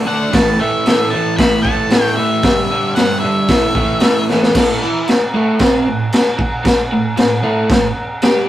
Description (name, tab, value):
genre	garage rock duo or trio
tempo	114 BPM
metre	4/4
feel	straight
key	unclear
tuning	A4 = 440 Hz
part	overdriven electric guitar	riff	0.0-8.5 s	G2 to G4	-17 LUFS	right 1 dB	none
part	octave-fuzz lead guitar	melody	0.1-4.2 s	E5 to B5	-19 LUFS	left 1 dB	distortion, slapback echo
part	raw garage drum kit	drums	0.3-8.3 s	crash cymbal, hi-hat, kick drum, snare drum	-14 LUFS	left 1 dB	none
room	light reverb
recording	rough rehearsal-room recording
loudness	-12 LUFS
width	side -13 dB against mid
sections	0.0-4.5 A section; 4.5-8.5 B section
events	drum fill 4.3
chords	0.3 A5; 2.4 G5; 3.5 A5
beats	| 0.34 0.86 1.39 1.92 | 2.44 2.97 3.49 4.02 | 4.54 5.07 5.59 6.12 | 6.65 7.17 7.70 8.22